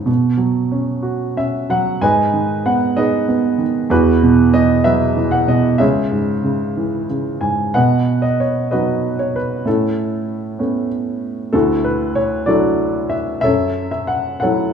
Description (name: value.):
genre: classical, lyrical solo piano.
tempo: 63 BPM (dotted quarters).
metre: 6/8.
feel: rubato.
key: unclear.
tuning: A4 = 440 Hz.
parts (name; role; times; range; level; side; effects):
dark baby grand piano; solo; 0.0-14.7 s; C#2 to G#5; -15 LUFS; right 1 dB; none.
room: light reverb.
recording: small room reverb.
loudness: -15 LUFS.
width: side -7 dB against mid.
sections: 0.0-7.8 A section; 7.8-14.7 B section.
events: none.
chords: 0.1 Bsus2; 2.0 G#m; 3.9 Esus2; 5.8 C#m; 7.8 B; 9.7 Aadd9; 11.5 Dadd9; 13.4 F#m7.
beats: | 0.08 1.06 | 2.03 2.98 | 3.91 4.85 | 5.79 6.76 | 7.75 8.72 | 9.66 10.60 | 11.54 12.48 | 13.45 14.42.